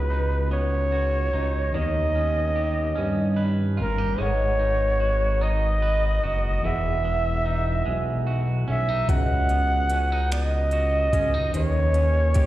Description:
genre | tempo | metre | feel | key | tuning
slow six-eight R&B | 49 BPM (dotted quarters) | 6/8 | straight | unclear | A4 = 440 Hz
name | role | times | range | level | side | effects
warm flugelhorn | melody | 0.0-12.5 s | A#4 to F#5 | -25 LUFS | right 1 dB | slapback echo, tape echo
electric guitar at the edge of break-up | second line | 0.0-12.5 s | C#3 to B4 | -33 LUFS | right 5 dB | slapback echo
mellow tine electric piano | accompaniment | 0.0-12.5 s | C#3 to F#5 | -34 LUFS | left 1 dB | medium stereo tremolo, slapback echo
fat analog bass | bass | 0.0-12.5 s | E1 to G2 | -24 LUFS | equal | none
smooth R&B drum kit | drums | 9.1-12.5 s | finger snaps, hi-hat, kick drum | -24 LUFS | equal | none
room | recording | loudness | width
light reverb | live gig heard through the venue's PA, recital hall reverb | -21 LUFS | side -15 dB against mid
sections
0.0-12.5 A section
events
none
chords
0.0 C#9sus4; 1.7 D#7b13; 4.2 G#m7; 6.6 Emaj9; 9.1 C#9sus4; 11.5 D#7b13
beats
0.52 | 1.74 2.97 | 4.19 5.42 | 6.64 7.86 | 9.09 10.31 | 11.54

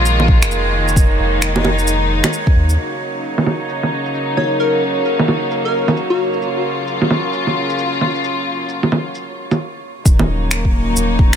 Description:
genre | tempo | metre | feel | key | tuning
future garage | 132 BPM | 4/4 | swing 61% on 16ths | Eb minor | A4 = 440 Hz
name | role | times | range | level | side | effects
warm studio string section | sustained chords | 0.0-11.4 s | Db3 to F4 | -20 LUFS | left 1 dB | sidechain pumping, low-pass filter
soft dub sub bass | bass | 0.0-2.8, 10.1-11.4 s | Eb1 to Eb2 | -18 LUFS | equal | tube saturation, sidechain pumping
drifting glass-harmonics texture | texture | 0.0-11.4 s | Db5 | -26 LUFS | right 8 dB | chorus, built-in reverb
electronic shaker, bongos and finger snaps | drums | 0.1-11.4 s | none | -19 LUFS | right 2 dB | low-pass filter on perc, low-pass filter on snare
electronic kick drum | drums | 0.3-2.5, 10.1-11.3 s | none | -12 LUFS | equal | none
plucky unison lead | melody | 4.4-6.4 s | Gb4 to Db5 | -21 LUFS | left 2 dB | cassette tape, tape echo
room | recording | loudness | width
light reverb, digital ambience | none | -14 LUFS | side -8 dB against mid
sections
0.0-2.8 A section; 2.8-10.1 B section; 10.1-11.4 C section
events
filter sweep on string section 2.8-10.1; stop 9.6-10.1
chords
0.0 Bb7sus4; 2.8 Ebm7; 6.4 Gbmaj7; 10.1 Ebm7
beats
0.06 0.51 | 0.96 1.42 1.87 2.33 | 2.78 3.24 3.69 4.15 | 4.60 5.06 5.51 5.96 | 6.42 6.87 7.33 7.78 | 8.24 8.69 9.15 9.60 | 10.06 10.51 10.96

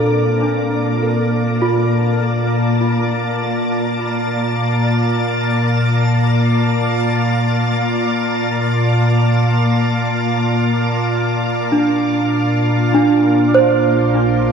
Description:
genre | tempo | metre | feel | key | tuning
ambient | free time | none | none | Bb major | A4 = 442 Hz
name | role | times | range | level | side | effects
soft additive organ-like pad | sustained chords | 0.0-14.5 s | Bb2 to A5 | -15 LUFS | equal | ensemble chorus, built-in reverb
celesta | arpeggios | 0.0-14.5 s | D4 to C5 | -17 LUFS | right 2 dB | analog delay
deep rumbling drone | bass | 14.0-14.5 s | Bb1 | -36 LUFS | left 1 dB | none
drifting glass-harmonics texture | texture | 13.9-14.5 s | Bb3 to Bb4 | -34 LUFS | left 2 dB | none
room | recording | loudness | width
wet echo chamber reverb, RT60 2.3 s | echo-heavy mix | -14 LUFS | side -6 dB against mid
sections
0.0-12.9 A section; 12.9-14.5 B section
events
filter sweep on ambient pad 0.0-12.9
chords
0.0 Bb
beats
free time

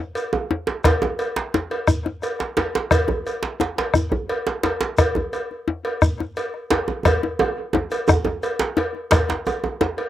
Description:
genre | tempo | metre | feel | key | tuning
west african traditional, West African drum ensemble | 116 BPM (dotted quarters) | 12/8 | straight | none | none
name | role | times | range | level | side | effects
cowbell | percussion | 0.2-10.1 s | none | -25 LUFS | equal | slapback echo
shekere | percussion | 0.2-9.5 s | none | -32 LUFS | right 1 dB | none
djembe | percussion | 0.3-10.0 s | none | -23 LUFS | right 4 dB | slapback echo
djembe | percussion | 0.5-10.1 s | none | -24 LUFS | left 4 dB | none
bombo | percussion | 0.8-9.3 s | none | -19 LUFS | left 1 dB | none
room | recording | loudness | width
little or no reverb | recorded outdoors, with no room sound | -20 LUFS | side -12 dB against mid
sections
0.0-9.1 A section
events
drum fill 7.0-9.1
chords
none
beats
0.33 | 0.84 1.36 1.88 2.40 | 2.91 3.43 3.95 4.46 | 4.98 5.50 6.02 6.53 | 7.05 7.57 8.09 8.60 | 9.12 9.64

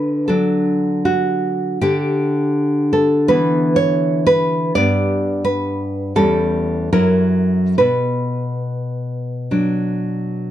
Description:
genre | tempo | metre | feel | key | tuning
romantic piece for solo classical guitar | 67-86 BPM | 4/4 | rubato | B minor from 4.8 s | A4 = 440 Hz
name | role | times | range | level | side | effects
nylon-string guitar | solo | 0.0-10.5 s | E2 to D5 | -15 LUFS | equal | none
room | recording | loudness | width
light reverb | dark, warm production | -15 LUFS | side -12 dB against mid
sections
0.0-10.5 A section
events
none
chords
0.0 D; 1.8 Em7/D; 4.8 G; 6.2 C#dim/E; 6.9 F#7; 7.8 Bm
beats
0.30 1.07 | 1.83 2.57 3.30 4.02 | 4.76 5.46 6.17 6.93 | 7.78 8.66 9.53 10.39

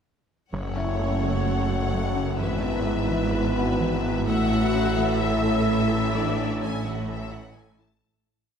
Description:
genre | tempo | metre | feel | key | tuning
cinematic, hybrid orchestral and electronic film score | 128 BPM | 4/4 | straight | unclear | A4 = 441 Hz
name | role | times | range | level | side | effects
clear studio violin section | melody | 0.5-8.0 s | E5 to A5 | -36 LUFS | left 6 dB | none
clear studio violin section | second line | 0.5-7.8 s | B4 to F#5 | -34 LUFS | left 4 dB | none
clear symphonic viola section | accompaniment | 0.5-7.8 s | A4 to E5 | -32 LUFS | left 1 dB | none
dark French horn section | sustained chords | 0.5-7.8 s | B3 to F#4 | -32 LUFS | left 4 dB | none
dark analog pad | sustained chords | 0.5-8.0 s | G#3 to B4 | -34 LUFS | equal | none
dark trombone section | sustained chords | 0.5-7.8 s | E3 to E4 | -34 LUFS | right 2 dB | none
thumb-piano-like synth pluck | arpeggios | 0.5-7.9 s | E3 to A4 | -33 LUFS | right 1 dB | none
rich symphonic cello section | bass | 0.5-7.8 s | F#2 to A2 | -29 LUFS | right 2 dB | none
snarling distorted saw bass | bass | 0.5-8.0 s | F#1 to A1 | -31 LUFS | left 1 dB | distortion
warm symphonic double bass section | bass | 0.5-7.8 s | F#1 to A1 | -30 LUFS | right 3 dB | none
felt-muted upright piano | texture | 0.8-8.1 s | E4 to F#5 | -37 LUFS | left 2 dB | none
room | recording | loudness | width
wet scoring stage reverb, RT60 1.7 s | heard from further back in the room | -22 LUFS | side -7 dB against mid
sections
0.5-8.0 theme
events
fade-out 6.2-8.0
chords
0.5 F#m; 2.4 E/G#; 4.3 A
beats
| 0.53 1.00 1.47 1.94 | 2.41 2.88 3.35 3.81 | 4.28 4.75 5.22 5.69 | 6.16 6.63 7.10 7.56

